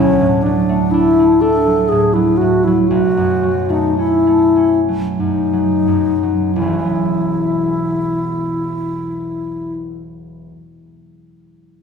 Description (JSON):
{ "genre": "classical, impressionist duo for alto flute and harp", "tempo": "41-64 BPM", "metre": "3/4", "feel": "rubato", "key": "E major", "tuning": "A4 = 439 Hz", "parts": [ { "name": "alto flute", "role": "melody", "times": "0.0-9.7 s", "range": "C#4 to A4", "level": "-15 LUFS", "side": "left 2 dB", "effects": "none" }, { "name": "concert harp", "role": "accompaniment", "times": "0.0-10.6 s", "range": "E1 to D4", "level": "-18 LUFS", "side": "right 2 dB", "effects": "none" } ], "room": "wet recital hall reverb, RT60 1.5 s", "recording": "recorded in a church or concert hall", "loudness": "-13 LUFS", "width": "side -6 dB against mid", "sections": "0.0-6.6 A section; 6.6-10.5 B section", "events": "slowing down 0.0-6.6", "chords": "0.0 D; 2.9 Bsus2; 6.6 E69", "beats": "0.92 1.90 | 2.91 3.98 5.20 | 6.57 7.87 9.21" }